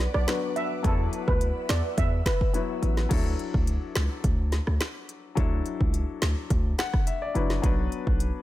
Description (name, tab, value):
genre	dancehall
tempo	106 BPM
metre	4/4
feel	straight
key	unclear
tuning	A4 = 440 Hz
part	clear baby grand piano	accompaniment	0.0-8.4 s	F#3 to F#5	-33 LUFS	left 6 dB	none
part	ethereal airy pad	sustained chords	0.0-3.1 s	B4 to E6	-39 LUFS	right 2 dB	ensemble chorus, built-in reverb, phaser, sidechain pumping
part	hard-hitting 808-style bass	bass	0.0-8.3 s	F#1 to E2	-26 LUFS	equal	none
part	afro-pop drum kit	drums	0.0-8.3 s	crash cymbal, finger snaps, hi-hat, kick drum, rim click, snare drum	-27 LUFS	equal	none
part	steel pan	melody	0.1-2.4 s	A4 to E5	-32 LUFS	right 3 dB	tape echo
room	little or no reverb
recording	none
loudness	-24 LUFS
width	side -15 dB against mid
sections	0.0-3.1 A section; 3.1-8.4 B section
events	grand piano fill 6.5-7.6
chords	0.0 Bm; 0.8 Esus2; 3.1 Dadd9; 7.6 Bm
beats	0.28 | 0.84 1.41 1.98 2.54 | 3.11 3.67 4.24 4.80 | 5.37 5.94 6.50 7.07 | 7.63 8.20